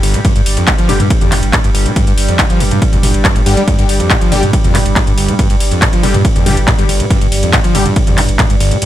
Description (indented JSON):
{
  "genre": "driving peak-time techno",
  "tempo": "140 BPM",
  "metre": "4/4",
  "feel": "straight",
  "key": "unclear",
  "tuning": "A4 = 440 Hz",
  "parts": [
    { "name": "overdriven acid bass", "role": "riff", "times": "0.0-8.9 s", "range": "G1 to G3", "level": "-16 LUFS", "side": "equal", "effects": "distortion, wide subtle chorus, sidechain pumping, ping-pong delay" },
    { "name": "warm sub bass", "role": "bass", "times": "0.0-8.7 s", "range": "G1", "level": "-17 LUFS", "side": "equal", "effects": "sidechain pumping, low-pass filter" },
    { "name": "analog drone", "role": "drone", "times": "0.0-8.9 s", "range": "G2 to G3", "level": "-20 LUFS", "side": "right 1 dB", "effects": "chorus, sidechain pumping" },
    { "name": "techno drum kit", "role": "drums", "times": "0.0-8.9 s", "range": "handclaps, hi-hat, ride cymbal, toms", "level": "-16 LUFS", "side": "equal", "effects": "none" },
    { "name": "electronic kick drum", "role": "drums", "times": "0.2-8.5 s", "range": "none", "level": "-13 LUFS", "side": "equal", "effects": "none" },
    { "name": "supersaw stab", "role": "stabs", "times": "0.9-7.8 s", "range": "D3 to G4", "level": "-20 LUFS", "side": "left 3 dB", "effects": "phaser, cassette tape, sidechain pumping, ping-pong delay" }
  ],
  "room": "digital ambience",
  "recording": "none",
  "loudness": "-9 LUFS",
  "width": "side -13 dB against mid",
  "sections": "0.0-8.9 A section",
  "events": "none",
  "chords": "0.0 G5"
}